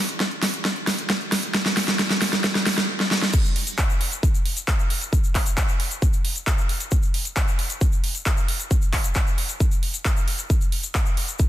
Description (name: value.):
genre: trance.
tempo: 134 BPM.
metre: 4/4.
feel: straight.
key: none.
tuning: none.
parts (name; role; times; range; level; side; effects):
big-room dance drum kit; drums; 0.1-11.5 s; crash cymbal, handclaps, hi-hat, snare drum; -24 LUFS; equal; sidechain pumping on hats, sidechain pumping on cymbals.
electronic kick drum; drums; 0.2-11.5 s; none; -21 LUFS; equal; high-pass filter on kick, high-pass filter on room.
egg shaker; percussion; 3.3-11.5 s; none; -32 LUFS; left 5 dB; none.
room: light reverb.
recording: dense, heavily limited modern master.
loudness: -20 LUFS.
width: side -13 dB against mid.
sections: 0.0-3.3 A section; 3.3-11.5 B section.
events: build-up 0.0-3.3; drum fill 0.0-2.9, 3.0-3.3; drop 3.3-11.5.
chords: none.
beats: 0.20 0.65 1.10 | 1.54 1.99 2.44 2.89 | 3.33 3.78 4.23 4.68 | 5.13 5.57 6.02 6.47 | 6.92 7.37 7.81 8.26 | 8.71 9.16 9.60 10.05 | 10.50 10.95 11.39.